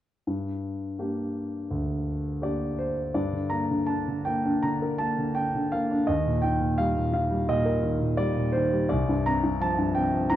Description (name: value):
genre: classical, lyrical solo piano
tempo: 84 BPM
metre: 4/4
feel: rubato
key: G minor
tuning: A4 = 437 Hz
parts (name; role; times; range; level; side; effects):
- dark concert grand piano; solo; 0.3-10.4 s; C2 to Bb5; -24 LUFS; equal; none
room: moderate recital hall reverb, RT60 1.4 s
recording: dark, warm production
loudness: -24 LUFS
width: side -12 dB against mid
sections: 0.3-3.2 A section; 3.2-10.4 B section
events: none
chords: 0.3 Gm; 6.1 Eb; 8.9 Csus4